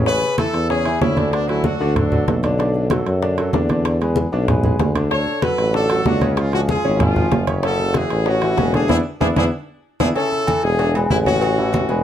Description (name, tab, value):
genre	latin, salsa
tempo	190 BPM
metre	4/4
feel	straight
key	A major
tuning	A4 = 440 Hz
part	bright upright piano	accompaniment	0.0-12.0 s	C#3 to D5	-23 LUFS	equal	none
part	clear tuba	bass	0.0-12.0 s	E1 to F#2	-20 LUFS	equal	none
part	brilliant horn section	melody	0.1-2.4, 5.1-12.0 s	B3 to C#5	-21 LUFS	left 2 dB	none
part	bongos and cowbell	percussion	0.1-12.0 s	none	-27 LUFS	left 7 dB	none
part	congas	percussion	0.1-12.0 s	none	-22 LUFS	equal	none
part	timbales and agogo bells	percussion	0.1-11.9 s	none	-27 LUFS	right 3 dB	none
room	moderate studio reverb, RT60 0.6 s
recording	dark, warm production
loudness	-16 LUFS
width	side -10 dB against mid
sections	0.1-10.2 A section; 10.2-12.0 B section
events	band accent 8.9-10.2; drum fill 9.4-10.2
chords	0.1 Amaj7; 1.3 D6; 2.6 Bm7; 3.9 E7; 5.1 Dmaj7; 6.4 C#; 7.6 F#m7; 8.9 E7(no3); 10.2 A; 10.8 E7; 11.4 A